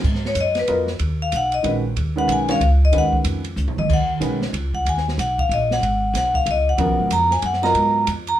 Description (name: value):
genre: modal jazz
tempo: 186 BPM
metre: 3/4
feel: swing 61% on 8ths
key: G# dorian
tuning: A4 = 439 Hz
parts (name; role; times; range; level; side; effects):
- upright bass; bass; 0.0-8.4 s; G#1 to G#2; -22 LUFS; equal; none
- open jazz drum kit; drums; 0.0-8.3 s; crash cymbal, hi-hat, kick drum, ride cymbal, snare drum, toms; -26 LUFS; right 2 dB; none
- vibraphone with medium hard mallets; melody; 0.3-8.4 s; B4 to A#5; -20 LUFS; left 1 dB; none
- warm concert grand piano; accompaniment; 0.7-4.4, 6.8-8.1 s; C#3 to D#5; -24 LUFS; right 1 dB; none
room: light reverb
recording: minimal, uncompressed stereo recording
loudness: -17 LUFS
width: side -12 dB against mid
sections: 0.0-8.4 A section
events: vibraphone solo 0.0-8.4; drum fill 3.6-3.9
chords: 0.0 G#m9